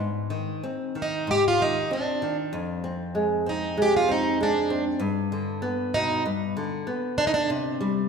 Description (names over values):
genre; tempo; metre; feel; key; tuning
fado-style ballad; 96 BPM; 4/4; rubato; unclear; A4 = 443 Hz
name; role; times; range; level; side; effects
nylon-string guitar; accompaniment; 0.0-8.1 s; F2 to C4; -26 LUFS; left 1 dB; none
picked plugged-in twelve-string acoustic guitar; melody; 1.0-7.5 s; D4 to G4; -25 LUFS; right 1 dB; none
room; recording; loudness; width
wet concert hall reverb, RT60 1.9 s; recorded in a church or concert hall; -23 LUFS; side -6 dB against mid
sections
0.0-8.1 A section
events
none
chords
0.0 Ab; 2.5 Fm; 5.0 G; 7.5 C5